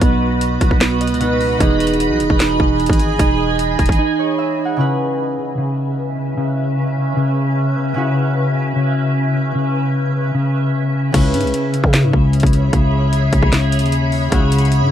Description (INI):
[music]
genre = hip hop, trap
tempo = 151 BPM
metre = 4/4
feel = half-time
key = C# minor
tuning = A4 = 436 Hz
[part]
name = concert harp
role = accompaniment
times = 0.0-14.9 s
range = B2 to F#5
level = -22 LUFS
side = left 1 dB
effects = none
[part]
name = granular cloud pad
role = sustained chords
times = 0.0-14.9 s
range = C#3 to B5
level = -22 LUFS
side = right 1 dB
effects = built-in reverb, phaser
[part]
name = mellow electric guitar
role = arpeggios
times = 0.0-14.9 s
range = C#3 to D#4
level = -18 LUFS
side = equal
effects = tape echo
[part]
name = growling 808-style bass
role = bass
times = 0.0-4.0, 11.1-14.9 s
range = E1 to C#3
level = -21 LUFS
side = equal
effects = none
[part]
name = trap drum kit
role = drums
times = 0.0-4.0, 11.1-14.8 s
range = crash cymbal, hi-hat, kick drum, snare drum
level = -17 LUFS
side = equal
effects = none
[sound]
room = light reverb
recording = none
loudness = -14 LUFS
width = side -10 dB against mid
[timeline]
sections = 0.0-4.8 A section; 4.8-11.1 B section; 11.1-14.9 A section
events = break 4.0-4.8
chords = 0.0 B; 1.6 Emaj7; 4.8 C#m7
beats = | 0.01 0.41 0.81 1.21 | 1.60 2.00 2.40 2.80 | 3.19 3.59 3.99 4.39 | 4.78 5.18 5.58 5.97 | 6.37 6.77 7.17 7.57 | 7.96 8.36 8.76 9.15 | 9.55 9.95 10.35 10.74 | 11.14 11.54 11.94 12.33 | 12.73 13.13 13.53 13.92 | 14.32 14.72